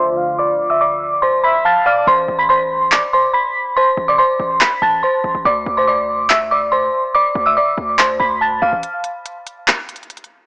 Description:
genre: hip hop, trap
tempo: 142 BPM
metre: 4/4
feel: half-time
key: A minor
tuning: A4 = 440 Hz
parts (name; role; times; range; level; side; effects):
- dark detuned synth bell; melody; 0.0-8.8 s; C5 to B6; -14 LUFS; equal; chorus, low-pass filter, analog delay
- breathy flute-like synth lead; second line; 0.0-2.1 s; D5 to F5; -21 LUFS; equal; chorus, analog delay
- dark analog pad; sustained chords; 0.0-2.0 s; D2 to A4; -29 LUFS; equal; chorus
- hard-hitting 808-style bass; bass; 2.1-8.8 s; A1 to D2; -28 LUFS; equal; none
- trap drum kit; drums; 2.9-10.3 s; handclaps, hi-hat; -15 LUFS; equal; vintage 12-bit sampler grit
room: light reverb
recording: dry, gritty hardware recording, transformer saturation, low-pass filter, small speaker sound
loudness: -13 LUFS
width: side -24 dB against mid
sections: 0.0-2.1 A section; 2.1-10.5 B section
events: filter sweep 0.0-2.1; hi-hats muted 2.1-8.8; break 8.8-10.5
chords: 0.0 Dm; 2.1 Am; 5.5 N.C.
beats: | 0.38 0.80 1.23 1.65 | 2.07 2.49 2.92 3.34 | 3.76 4.18 4.61 5.03 | 5.45 5.87 6.30 6.72 | 7.14 7.57 7.99 8.41 | 8.83 9.26 9.68 10.10

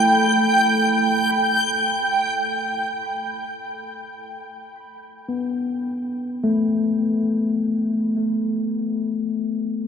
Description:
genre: ambient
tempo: free time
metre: none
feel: none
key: unclear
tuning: A4 = 440 Hz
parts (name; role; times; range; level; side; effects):
- mellow tine electric piano; arpeggios; 0.0-9.9 s; A3 to B5; -23 LUFS; left 2 dB; wide subtle chorus, tape echo
- analog drone; drone; 0.0-1.1 s; A3 to E4; -25 LUFS; equal; chorus
- backwards swelling texture; texture; 0.0-1.0 s; G5 to G6; -20 LUFS; right 1 dB; built-in reverb
room: wet huge ambient reverb, RT60 8.7 s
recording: lossy compression artefacts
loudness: -19 LUFS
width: side -7 dB against mid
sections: 1.0-9.9 A section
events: fade-in on tine electric piano 1.0-9.9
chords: 0.0 Em/A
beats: free time

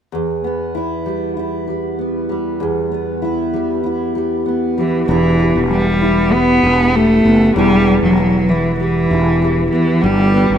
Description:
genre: acoustic pop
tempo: 97 BPM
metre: 4/4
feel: straight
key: E minor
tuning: A4 = 441 Hz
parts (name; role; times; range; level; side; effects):
- fingerpicked steel-string acoustic guitar; accompaniment; 0.1-10.6 s; E2 to G4; -17 LUFS; equal; double-tracked left and right
- rich cello; melody; 4.8-10.6 s; E3 to B3; -13 LUFS; equal; none
- fretless electric bass; bass; 5.1-10.6 s; E1 to G1; -19 LUFS; equal; none
room: light reverb, small room ambience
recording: rough home demo mix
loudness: -13 LUFS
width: side -9 dB against mid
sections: 0.1-5.1 A section; 5.1-10.6 B section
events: none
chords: 0.1 Em; 10.0 G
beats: | 0.12 0.74 1.36 1.99 | 2.60 3.22 3.84 4.46 | 5.08 5.70 6.32 6.94 | 7.56 8.18 8.79 9.41 | 10.03

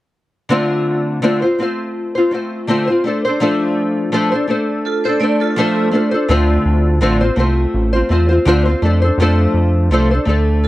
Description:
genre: indie pop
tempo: 83 BPM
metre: 4/4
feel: swing 55% on 16ths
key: D minor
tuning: A4 = 440 Hz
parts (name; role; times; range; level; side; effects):
- nylon-string guitar; accompaniment; 0.5-10.7 s; D3 to C5; -15 LUFS; left 1 dB; analog chorus, vibrato effect
- vibraphone with medium hard mallets; second line; 4.9-6.3, 10.6-10.7 s; F4 to D5; -21 LUFS; right 6 dB; ensemble chorus, tape echo, plate reverb
- chorused synth bass; bass; 6.3-10.7 s; A1 to F2; -15 LUFS; equal; none
room: light reverb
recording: cassette tape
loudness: -13 LUFS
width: side -16 dB against mid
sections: 0.5-10.7 A section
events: none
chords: 0.5 Dm7; 3.0 F6; 6.3 Dm7; 8.8 F6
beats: | 0.51 1.23 1.96 2.68 | 3.40 4.12 4.85 5.57 | 6.29 7.02 7.74 8.46 | 9.19 9.91 10.63

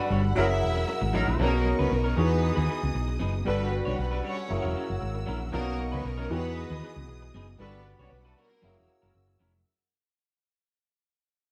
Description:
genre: disco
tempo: 116 BPM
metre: 4/4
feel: straight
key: unclear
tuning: A4 = 440 Hz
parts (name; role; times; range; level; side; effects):
- warm studio violin section; second line; 0.0-8.9 s; A3 to E5; -37 LUFS; equal; none
- electric guitar at the edge of break-up; accompaniment; 0.0-9.6 s; F#3 to C#5; -38 LUFS; equal; none
- warm grand piano; accompaniment; 0.0-9.7 s; B2 to B4; -35 LUFS; equal; none
- rich studio string section; sustained chords; 0.0-9.7 s; G3 to E6; -41 LUFS; equal; none
- hollow-body short-scale fingered electric bass; bass; 0.1-9.6 s; E1 to E2; -31 LUFS; equal; none
- mellow horn section; stabs; 0.4-9.4 s; E3 to D#5; -36 LUFS; equal; none
room: wet studio reverb, RT60 0.8 s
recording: band playing live in one room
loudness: -28 LUFS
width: mono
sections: 0.0-1.4 A section; 1.4-9.7 B section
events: fade-out 1.4-9.7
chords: 0.4 F#7; 1.4 Bmaj9; 2.2 Emaj7; 3.5 Gmaj7; 4.5 F#7; 5.5 Bmaj9; 6.3 Emaj7; 7.6 Gmaj7; 8.6 F#7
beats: 0.37 0.88 | 1.40 1.92 2.43 2.95 | 3.46 3.98 4.50 5.01 | 5.53 6.05 6.57 7.08 | 7.60 8.12 8.63 9.15

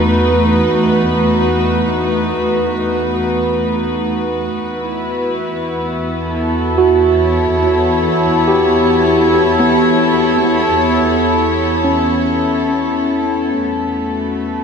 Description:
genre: ambient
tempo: free time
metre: none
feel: none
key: unclear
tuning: A4 = 438 Hz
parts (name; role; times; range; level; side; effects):
- dark studio string section; sustained chords; 0.0-14.6 s; A3 to C#5; -14 LUFS; equal; shimmer reverb
- muted studio double bass section; bass; 0.0-14.6 s; E2; -22 LUFS; right 1 dB; none
- tine electric piano; arpeggios; 6.8-14.6 s; B3 to G4; -16 LUFS; moving between left 6 dB and right 6 dB; auto-pan, diffuse ambient delay, shimmer reverb
room: wet cathedral reverb, RT60 5.4 s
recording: in a vast, echoing space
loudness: -13 LUFS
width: side -6 dB against mid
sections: 0.0-14.6 A section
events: fade-out 10.6-14.6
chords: 0.0 B7/E; 4.5 A7/E; 13.6 B7(no3)/E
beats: free time

